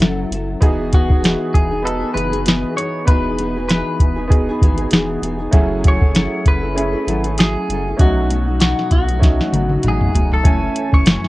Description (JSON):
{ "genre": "indie pop, bedroom pop", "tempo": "98 BPM", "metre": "4/4", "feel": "swing 55% on 16ths", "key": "E major", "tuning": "A4 = 440 Hz", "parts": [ { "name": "clean electric guitar", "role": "melody", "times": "0.0-11.3 s", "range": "E4 to C#5", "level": "-24 LUFS", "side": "left 1 dB", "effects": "wide subtle chorus, cassette tape, plate reverb" }, { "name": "nylon-string guitar", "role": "accompaniment", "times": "0.0-11.3 s", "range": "F#2 to A4", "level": "-23 LUFS", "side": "left 2 dB", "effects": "ensemble chorus, warbly pitch drift, plate reverb" }, { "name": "round analog bass", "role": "bass", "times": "0.0-11.2 s", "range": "E1 to B1", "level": "-23 LUFS", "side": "equal", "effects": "none" }, { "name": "soft vintage rhythm box", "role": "drums", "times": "0.0-11.3 s", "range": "hi-hat, kick drum, snare drum, toms", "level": "-14 LUFS", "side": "equal", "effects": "none" }, { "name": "bright upright piano", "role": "accompaniment", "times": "0.6-11.3 s", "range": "A3 to G#5", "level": "-23 LUFS", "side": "right 2 dB", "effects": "plate reverb" } ], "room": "light reverb", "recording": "home recording on cassette", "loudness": "-14 LUFS", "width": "side -18 dB against mid", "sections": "0.0-10.5 A section", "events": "drum fill 9.2-10.5", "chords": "0.0 F#m7; 0.6 Emaj7; 5.5 F#m7; 8.0 B7; 10.5 F#m7" }